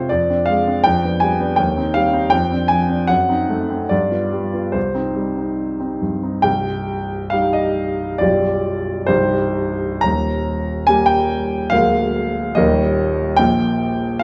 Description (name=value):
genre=classical, romantic character piece for solo piano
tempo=60-82 BPM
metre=2/4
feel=rubato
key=C minor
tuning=A4 = 441 Hz
part: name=warm grand piano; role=solo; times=0.0-14.2 s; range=B0 to Bb5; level=-18 LUFS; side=equal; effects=none
room=moderate recital hall reverb, RT60 1.5 s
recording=none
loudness=-18 LUFS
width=mono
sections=0.0-6.5 A section; 6.5-14.2 B section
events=none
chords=0.1 Dm7b5/F; 0.8 G7/F; 1.6 Cm/Eb; 2.3 Dm7b5/F; 3.1 F#dim7; 3.9 G7; 4.8 Cm; 8.2 G7/B; 9.1 Cm; 10.0 Eb; 11.7 Bb7/D; 12.6 Eb; 13.4 N.C.